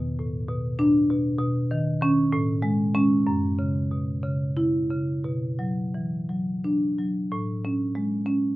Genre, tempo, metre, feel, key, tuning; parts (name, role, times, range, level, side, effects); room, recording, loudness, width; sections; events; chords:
classical, contemporary piece for solo marimba; 57-66 BPM (dotted quarters); 6/8; rubato; A major; A4 = 440 Hz
marimba with medium mallets; solo; 0.0-8.6 s; E2 to E4; -22 LUFS; equal
little or no reverb; close, detailed microphones; -22 LUFS; side -17 dB against mid
0.0-7.3 A section; 7.3-8.6 B section
0.0 E5; 1.4 Badd9; 2.3 Amaj7; 3.3 F#5; 5.2 Bmadd11; 7.3 Amaj7